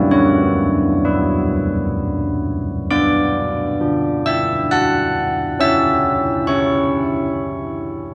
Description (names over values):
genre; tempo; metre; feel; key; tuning
classical, tune for church bells; 64-69 BPM; 3/4; straight; B minor; A4 = 440 Hz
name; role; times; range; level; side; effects
carillon bells; solo; 0.0-8.1 s; B3 to F#6; -18 LUFS; equal; none
room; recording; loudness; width
wet cathedral reverb, RT60 4.3 s; dark, warm production; -18 LUFS; mono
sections
0.0-2.9 A section; 2.9-8.1 B section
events
none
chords
0.1 N.C.; 2.9 Bm; 5.6 C#m